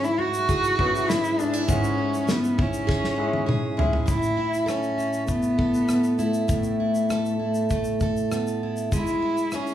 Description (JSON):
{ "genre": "acoustic pop", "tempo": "100 BPM", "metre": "4/4", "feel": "straight", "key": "A major", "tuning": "A4 = 440 Hz", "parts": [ { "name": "dark cello", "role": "melody", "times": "0.0-9.7 s", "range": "A3 to F#4", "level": "-24 LUFS", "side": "left 1 dB", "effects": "none" }, { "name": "picked plugged-in steel-string acoustic guitar", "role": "accompaniment", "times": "0.0-9.7 s", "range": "G#2 to A4", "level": "-26 LUFS", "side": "right 3 dB", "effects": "none" }, { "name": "warm baby grand piano", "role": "accompaniment", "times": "0.0-4.1 s", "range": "G#3 to F#5", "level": "-30 LUFS", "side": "left 5 dB", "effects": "none" }, { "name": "natural country drum kit", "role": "drums", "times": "0.0-9.7 s", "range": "kick drum, rim click, shaker, snare drum, toms", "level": "-27 LUFS", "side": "equal", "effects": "none" } ], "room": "light reverb", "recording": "small room reverb", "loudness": "-21 LUFS", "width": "side -11 dB against mid", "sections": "0.0-4.1 A section; 4.1-9.7 B section", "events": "drum fill 2.9-4.1", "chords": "0.0 C#m/G#; 4.1 Asus2; 8.9 C#m/G#", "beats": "0.49 1.09 | 1.69 2.29 2.88 3.48 | 4.09 4.69 5.29 5.89 | 6.50 7.10 7.71 8.31 | 8.92 9.52" }